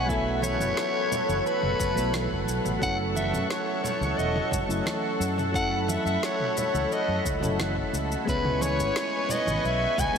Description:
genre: sunset chillout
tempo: 88 BPM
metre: 4/4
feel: straight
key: F# minor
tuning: A4 = 440 Hz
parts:
  - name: raspy soprano saxophone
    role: melody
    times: 0.0-10.2 s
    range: B4 to G#5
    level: -28 LUFS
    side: equal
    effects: vintage 12-bit sampler grit, ping-pong delay
  - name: soft electric-piano-like synth keys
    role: accompaniment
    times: 0.0-10.2 s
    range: F#3 to B4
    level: -31 LUFS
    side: left 1 dB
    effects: chorus, auto-pan, ping-pong delay
  - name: lush unison pad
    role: sustained chords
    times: 0.0-10.2 s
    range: A4 to C#6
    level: -31 LUFS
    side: equal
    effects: chorus
  - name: fingered electric bass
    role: bass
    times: 0.0-10.2 s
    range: E1 to F#2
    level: -30 LUFS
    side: equal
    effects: none
  - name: deep house drum kit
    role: drums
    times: 0.1-10.2 s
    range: shaker, snare drum, toms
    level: -35 LUFS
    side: equal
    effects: studio ambience
  - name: electronic kick drum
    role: drums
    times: 0.1-10.1 s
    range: none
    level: -34 LUFS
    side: equal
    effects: studio ambience
  - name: congas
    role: percussion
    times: 0.4-10.1 s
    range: none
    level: -39 LUFS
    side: right 3 dB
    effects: none
room: wet huge ambient reverb, RT60 8.3 s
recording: dreamy mix soaked in reverb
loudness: -24 LUFS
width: side -6 dB against mid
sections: 0.0-10.2 A section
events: none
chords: 0.1 B7sus4; 2.8 F#m7; 8.3 C#m7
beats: | 0.09 0.78 1.46 2.14 | 2.82 3.50 4.18 4.87 | 5.55 6.23 6.91 7.59 | 8.28 8.96 9.64

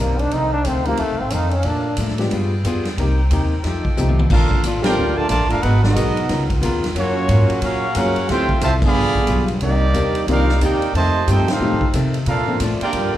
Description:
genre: jazz, big band swing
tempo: 181 BPM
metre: 4/4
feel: swing 63% on 8ths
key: Bb major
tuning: A4 = 439 Hz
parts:
  - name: bright trombone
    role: melody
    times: 0.0-2.0 s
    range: A3 to Eb4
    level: -22 LUFS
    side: equal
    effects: slapback echo
  - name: archtop guitar, miked and amplified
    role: accompaniment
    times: 0.0-13.2 s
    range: F2 to Bb4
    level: -26 LUFS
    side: left 5 dB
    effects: slapback echo
  - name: warm saxophone section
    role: sustained chords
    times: 0.0-13.2 s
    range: Cb3 to G5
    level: -30 LUFS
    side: left 1 dB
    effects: none
  - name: upright bass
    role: bass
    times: 0.0-13.2 s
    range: F1 to C3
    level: -20 LUFS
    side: equal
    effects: none
  - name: swinging big-band drum kit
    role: drums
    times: 0.2-13.0 s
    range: crash cymbal, hi-hat, kick drum, ride cymbal, snare drum, toms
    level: -25 LUFS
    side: equal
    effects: none
  - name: warm baby grand piano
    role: accompaniment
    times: 0.9-12.6 s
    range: Eb3 to Bb4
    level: -25 LUFS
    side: left 3 dB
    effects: none
  - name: bright trumpet section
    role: melody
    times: 4.3-13.1 s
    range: Bb3 to Cb6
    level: -22 LUFS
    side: right 1 dB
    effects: slapback echo
  - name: dark trombone section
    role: second line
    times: 4.3-13.2 s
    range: C3 to G4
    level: -24 LUFS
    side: right 4 dB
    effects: none
room: small room ambience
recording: live gig heard through the venue's PA, club reverb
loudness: -16 LUFS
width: side -13 dB against mid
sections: 0.0-4.3 A section; 4.3-13.2 B section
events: trombone solo 0.0-4.3; drum fill 4.0-4.3; band accent 4.8, 8.8, 11.4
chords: 0.3 F7; 1.7 Bbmaj7; 2.3 G7b9; 3.0 Cm7; 3.6 F9; 4.3 Bbmaj7; 5.6 Abm9; 6.3 Db13; 7.0 Gbmaj7; 8.3 Dm9; 9.0 G7b9; 9.6 Cm9; 10.9 F7; 12.3 Bbmaj7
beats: | 0.32 0.66 0.99 1.32 | 1.65 1.98 2.31 2.65 | 2.98 3.31 3.64 3.98 | 4.31 4.64 4.97 5.30 | 5.63 5.97 6.30 6.63 | 6.96 7.29 7.62 7.96 | 8.29 8.62 8.95 9.29 | 9.62 9.95 10.28 10.61 | 10.95 11.28 11.61 11.94 | 12.27 12.60 12.94

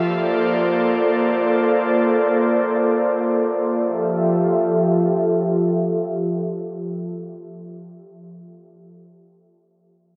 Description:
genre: hip hop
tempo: free time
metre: none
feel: none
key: F major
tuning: A4 = 439 Hz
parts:
  - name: airy breathy pad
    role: sustained chords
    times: 0.0-8.4 s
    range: F3 to E5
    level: -20 LUFS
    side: equal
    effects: chorus, low-pass filter
room: light reverb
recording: worn, warbling old tape, cassette tape, warbly pitch drift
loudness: -20 LUFS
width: mono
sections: 0.0-3.9 A section; 3.9-7.7 B section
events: filter sweep on analog synth pad 0.0-3.9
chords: 0.0 Bbmaj9; 3.9 Fmaj7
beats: free time

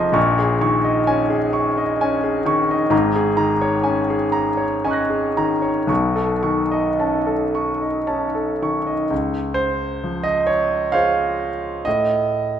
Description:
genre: classical, impressionist solo piano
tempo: 54-66 BPM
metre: 3/4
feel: rubato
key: Db major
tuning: A4 = 440 Hz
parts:
  - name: clear concert grand piano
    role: solo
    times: 0.0-12.6 s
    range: F1 to Bb6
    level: -17 LUFS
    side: equal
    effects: none
room: wet recital hall reverb, RT60 1.4 s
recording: none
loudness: -17 LUFS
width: side -9 dB against mid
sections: 0.0-9.1 A section; 9.1-12.6 B section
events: none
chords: 0.2 Bbm7; 2.9 Ab11; 5.9 Cb9; 9.1 Dbmaj7; 11.9 N.C.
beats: | 0.16 1.09 2.01 | 2.92 3.85 4.84 | 5.89 6.99 8.08 | 9.11 10.03 10.95 | 11.86

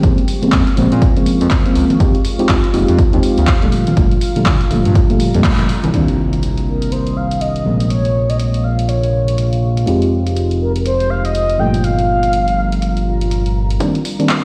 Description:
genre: deep house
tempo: 122 BPM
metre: 4/4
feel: swing 60% on 16ths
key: C minor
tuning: A4 = 440 Hz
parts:
  - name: deep dark ambient pad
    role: sustained chords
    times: 0.0-14.4 s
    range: Eb3 to Eb6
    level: -28 LUFS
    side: equal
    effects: chorus, built-in reverb, sidechain pumping
  - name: mellow FM electric piano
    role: stabs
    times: 0.0-14.4 s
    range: Bb2 to G4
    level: -20 LUFS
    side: equal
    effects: chorus, sidechain pumping, tape echo
  - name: smooth synth bass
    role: bass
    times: 0.0-13.8 s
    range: F1 to Bb2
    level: -20 LUFS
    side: equal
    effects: tube saturation, sidechain pumping
  - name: electronic kick drum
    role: drums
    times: 0.0-5.6, 13.8-14.4 s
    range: none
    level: -17 LUFS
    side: equal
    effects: high-pass filter on kick, vintage 12-bit sampler grit, high-pass filter on room
  - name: punchy analog drum machine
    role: drums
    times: 0.0-14.4 s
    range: handclaps, hi-hat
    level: -27 LUFS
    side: equal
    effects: vintage 12-bit sampler grit
  - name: congas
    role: percussion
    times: 0.8-5.9 s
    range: none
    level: -27 LUFS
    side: equal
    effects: none
  - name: impact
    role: sound effects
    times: 5.9-7.9 s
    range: none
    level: -26 LUFS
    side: equal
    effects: none
  - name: mellow horn-like synth lead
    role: melody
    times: 6.7-13.3 s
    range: Bb4 to G5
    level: -22 LUFS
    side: equal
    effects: chorus, tape echo
room: light reverb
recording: played on a big sound system in a bare room, stone room reverb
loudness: -15 LUFS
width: mono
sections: 0.0-5.9 A section; 5.9-13.8 B section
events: band accent 5.4; impact 5.9-7.9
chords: 0.0 Bbm7; 2.0 Fm7; 3.7 Gm7; 5.9 Cm7; 7.7 Bbm7; 9.9 Fm7; 11.6 Gm7; 13.8 Cm7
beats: | 0.04 0.53 1.02 1.51 | 2.00 2.49 2.99 3.48 | 3.97 4.46 4.95 5.45 | 5.94 6.43 6.92 7.41 | 7.90 8.40 8.89 9.38 | 9.87 10.36 10.86 11.35 | 11.84 12.33 12.82 13.31 | 13.81 14.30

